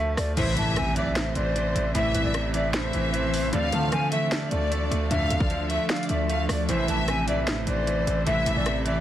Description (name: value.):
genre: hip hop, trap.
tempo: 152 BPM.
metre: 4/4.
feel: half-time.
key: A minor.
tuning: A4 = 441 Hz.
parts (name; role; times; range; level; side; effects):
hollow concert flute; melody; 0.0-9.0 s; C5 to A5; -29 LUFS; left 1 dB; low-pass filter, ping-pong delay.
bright concert grand piano; accompaniment; 0.0-9.0 s; A2 to A3; -30 LUFS; right 2 dB; low-pass filter.
distorted 808-style bass; bass; 0.0-9.0 s; A1 to D3; -28 LUFS; equal; distortion.
trap drum kit; drums; 0.2-8.9 s; crash cymbal, handclaps, hi-hat, kick drum, rim click, snare drum; -30 LUFS; equal; overdrive.
warm studio violin section; second line; 0.4-9.0 s; C5 to F5; -31 LUFS; left 2 dB; ping-pong delay.
granular cloud pad; sustained chords; 1.7-9.0 s; E3 to A4; -34 LUFS; left 1 dB; built-in reverb.
chorused polysynth; stabs; 0.4-8.6 s; A1 to F3; -31 LUFS; equal; none.
impact; sound effects; 0.4-1.9 s; none; -34 LUFS; equal; none.
room: light reverb.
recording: dense, heavily limited modern master, vinyl crackle.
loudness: -22 LUFS.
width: side -11 dB against mid.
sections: 0.4-9.0 A section.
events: impact 0.4-1.9.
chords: 0.4 Am; 3.5 Dm; 6.7 Am.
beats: | 0.37 0.77 1.16 1.56 | 1.95 2.35 2.74 3.13 | 3.53 3.92 4.32 4.71 | 5.11 5.50 5.90 6.29 | 6.69 7.08 7.48 7.87 | 8.27 8.66.